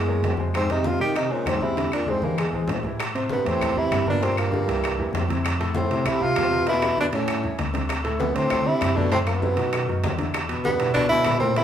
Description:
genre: Afro-Cuban jazz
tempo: 196 BPM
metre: 4/4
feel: straight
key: A minor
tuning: A4 = 440 Hz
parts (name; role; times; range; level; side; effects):
- breathy tenor saxophone; melody; 0.0-11.6 s; Ab3 to G4; -24 LUFS; right 1 dB; none
- growling baritone saxophone; second line; 0.0-11.6 s; E2 to Eb3; -28 LUFS; equal; none
- clear concert grand piano; accompaniment; 0.0-11.6 s; A2 to E5; -30 LUFS; equal; none
- mellow tine electric piano; bass; 0.0-11.6 s; C2 to E3; -28 LUFS; equal; medium stereo tremolo
- congas; percussion; 0.1-11.6 s; none; -34 LUFS; left 1 dB; none
- bongos; percussion; 0.2-11.6 s; none; -35 LUFS; left 4 dB; none
- timbales; percussion; 0.2-11.6 s; none; -31 LUFS; right 2 dB; none
- claves; percussion; 0.5-11.4 s; none; -37 LUFS; left 4 dB; none
room: wet large studio reverb, RT60 1.1 s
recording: band playing live in one room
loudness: -21 LUFS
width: side -9 dB against mid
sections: 0.0-3.0 A section; 3.0-11.6 B section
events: drum fill 2.1-3.0, 6.7-7.9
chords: 0.0 Gb7#11; 0.5 Fm7; 1.8 E7b13; 3.0 Am7; 4.2 Gm7; 4.8 C7; 5.4 Fmaj7; 6.7 E5; 7.3 A; 7.9 Dsus2; 9.1 F#m7b5; 9.7 B; 10.3 Em7

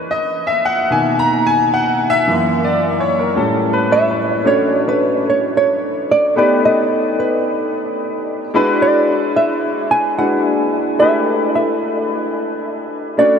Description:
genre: pop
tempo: 110 BPM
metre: 4/4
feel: straight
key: D major from 4.5 s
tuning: A4 = 444 Hz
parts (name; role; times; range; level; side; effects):
- warm baby grand piano; accompaniment; 0.0-13.4 s; F#2 to A#5; -16 LUFS; left 1 dB; analog chorus
- hollow-body jazz guitar; melody; 3.9-13.4 s; B4 to G#5; -17 LUFS; right 2 dB; none
room: wet huge ambient reverb, RT60 7.5 s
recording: dreamy mix soaked in reverb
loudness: -14 LUFS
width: side -7 dB against mid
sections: 0.0-4.5 A section; 4.5-13.4 B section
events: grand piano solo 0.0-4.5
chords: 0.1 Bmaj7; 2.3 F#7; 3.4 A7; 4.5 Dmaj7; 6.4 Baug7; 8.5 E9; 11.0 A9sus4

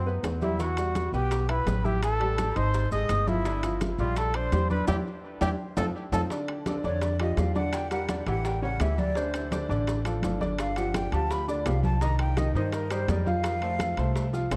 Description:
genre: Afro-Cuban jazz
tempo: 168 BPM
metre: 4/4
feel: straight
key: unclear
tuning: A4 = 438 Hz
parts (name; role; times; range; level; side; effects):
- breathy trumpet; melody; 0.0-6.2 s; C4 to D#5; -34 LUFS; equal; dub echo
- breathy jazz flute; second line; 0.0-14.1 s; Bb4 to D#6; -37 LUFS; equal; none
- upright bass; bass; 0.0-14.6 s; G1 to G2; -31 LUFS; equal; none
- clear baby grand piano; accompaniment; 0.1-14.6 s; C#3 to F5; -34 LUFS; equal; dub echo
- bongos; percussion; 0.1-14.6 s; none; -42 LUFS; equal; none
- congas; percussion; 0.1-14.6 s; none; -37 LUFS; equal; none
- maracas; percussion; 0.2-14.6 s; none; -53 LUFS; equal; dub echo
- timbales; percussion; 0.2-14.6 s; none; -39 LUFS; equal; none
room: light reverb, small room ambience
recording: echo-heavy mix, cassette tape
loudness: -28 LUFS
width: mono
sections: 0.0-6.3 A section; 6.3-14.6 B section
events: band accent 4.9-6.3; flute solo 6.3-14.6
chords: 0.0 B5; 0.6 Emadd9; 2.0 A5; 2.7 G#5; 3.5 Gm7; 4.9 Em7; 5.6 F7; 6.3 Ebmaj9 (rootless); 7.7 Em7b5; 8.4 A7; 9.2 Dm7; 10.6 G5; 12.0 Cm7; 13.4 F

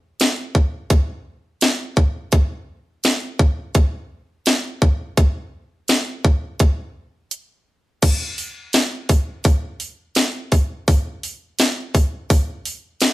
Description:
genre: blues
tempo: 84 BPM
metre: 4/4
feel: swing 54% on 16ths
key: none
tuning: none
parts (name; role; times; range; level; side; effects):
- drum and bass drum kit; drums; 0.2-13.1 s; crash cymbal, hi-hat, kick drum, snare drum; -16 LUFS; equal; overdrive
room: moderate studio reverb, RT60 0.8 s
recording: band playing live in one room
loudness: -17 LUFS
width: side -17 dB against mid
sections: 0.0-8.0 A section; 8.0-13.1 A section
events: break 7.3-8.0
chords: none

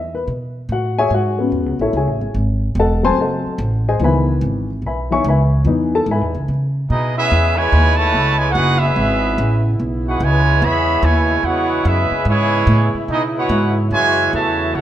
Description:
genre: jazz, big band swing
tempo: 145 BPM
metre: 4/4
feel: swing 66% on 8ths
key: C# minor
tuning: A4 = 440 Hz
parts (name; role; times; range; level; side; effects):
- dark baby grand piano; accompaniment; 0.0-6.5 s; D#3 to C#6; -18 LUFS; left 3 dB; none
- upright bass; bass; 0.0-14.8 s; E1 to C#3; -18 LUFS; equal; none
- clear trumpet section; melody; 6.9-14.8 s; B3 to B5; -17 LUFS; right 1 dB; none
- muted trombone section; second line; 6.9-14.8 s; B2 to F#4; -23 LUFS; right 1 dB; none
- bright trombone section; sustained chords; 7.3-14.8 s; C#3 to E4; -24 LUFS; right 1 dB; none
room: moderate large studio reverb, RT60 1.4 s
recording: none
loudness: -14 LUFS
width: side -11 dB against mid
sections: 0.0-7.3 A section; 7.3-14.8 B section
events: grand piano solo 0.0-7.3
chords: 0.0 C#m7 (rootless); 0.7 Amaj7; 2.4 G#7b9; 4.0 C#m7; 13.9 F#m7

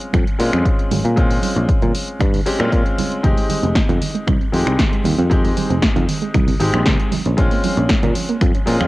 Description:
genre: nu-disco, nu disco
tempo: 116 BPM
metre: 4/4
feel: straight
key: unclear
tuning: A4 = 440 Hz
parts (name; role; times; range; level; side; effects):
- bright grand piano; accompaniment; 0.0-8.9 s; Ab3 to G4; -23 LUFS; left 1 dB; sidechain pumping, low-pass filter, cassette tape
- house drum kit; drums; 0.0-8.9 s; finger snaps, hi-hat, snare drum; -24 LUFS; left 1 dB; none
- picked electric bass; bass; 0.1-8.9 s; F1 to Bb2; -18 LUFS; equal; none
- electronic kick drum; drums; 0.1-8.5 s; none; -18 LUFS; equal; none
- congas; percussion; 0.1-8.9 s; none; -27 LUFS; right 7 dB; none
- soft round pluck; arpeggios; 3.2-8.9 s; Eb3 to F4; -24 LUFS; right 5 dB; chorus, sidechain pumping, cassette tape, tape echo
room: light reverb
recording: home recording on cassette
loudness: -15 LUFS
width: side -18 dB against mid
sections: 0.0-8.9 A section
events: none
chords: 0.0 Bbm7; 3.2 Fm7; 7.1 Bbm7

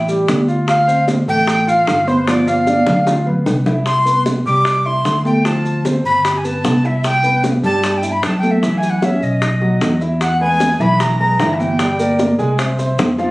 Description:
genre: Afro-Cuban jazz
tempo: 151 BPM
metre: 4/4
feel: straight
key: C major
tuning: A4 = 440 Hz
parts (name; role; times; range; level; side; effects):
- breathy bright jazz flute; melody; 0.0-12.2 s; C5 to D6; -17 LUFS; equal; none
- warm concert grand piano; accompaniment; 0.0-13.3 s; E3 to Ab5; -20 LUFS; equal; none
- fingered electric bass; bass; 0.0-13.3 s; G1 to G2; -19 LUFS; equal; none
- bongos; percussion; 0.1-13.3 s; none; -21 LUFS; left 2 dB; none
- congas; percussion; 0.1-13.3 s; none; -21 LUFS; equal; none
- maracas; percussion; 0.1-13.3 s; none; -33 LUFS; right 1 dB; none
room: moderate small room ambience, RT60 0.5 s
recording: recorded on a phone in the room, studio reverb, compression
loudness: -13 LUFS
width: side -20 dB against mid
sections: 0.0-10.2 A section; 10.2-13.3 B section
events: drum fill 2.3-3.9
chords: 0.0 A5; 0.7 Dm7; 2.3 G7; 3.9 Cmaj7; 5.5 Dm7; 6.2 Gadd9; 7.0 Cmaj7; 8.6 F#5; 9.4 B; 10.2 E; 11.8 Gm; 12.6 Cadd11

